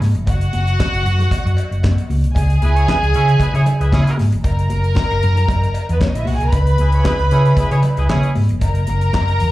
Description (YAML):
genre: disco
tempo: 115 BPM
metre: 4/4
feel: straight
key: unclear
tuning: A4 = 440 Hz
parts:
  - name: hollow-body short-scale fingered electric bass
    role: bass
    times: 0.0-9.5 s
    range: E#1 to C#3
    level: -16 LUFS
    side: equal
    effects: none
  - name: damped 70s drum kit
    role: drums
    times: 0.0-9.5 s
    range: handclaps, hi-hat, kick drum, snare drum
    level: -20 LUFS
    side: equal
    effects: none
  - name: congas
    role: percussion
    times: 0.0-9.3 s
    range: none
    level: -29 LUFS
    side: left 3 dB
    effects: slapback echo
  - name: warm studio string section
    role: second line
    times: 0.3-9.5 s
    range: B3 to B5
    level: -22 LUFS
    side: right 1 dB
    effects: slapback echo
  - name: cowbell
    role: percussion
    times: 0.3-9.3 s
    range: none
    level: -35 LUFS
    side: left 1 dB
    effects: slapback echo
  - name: clear horn section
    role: stabs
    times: 2.6-8.3 s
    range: C#4 to C#5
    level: -24 LUFS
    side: right 1 dB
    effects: slapback echo
room: small room ambience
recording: live gig heard through the venue's PA, club reverb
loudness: -14 LUFS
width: side -16 dB against mid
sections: 0.0-9.5 A section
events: none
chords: 0.3 F#5; 2.4 C#m; 4.4 F#; 6.5 C#m7; 8.6 F#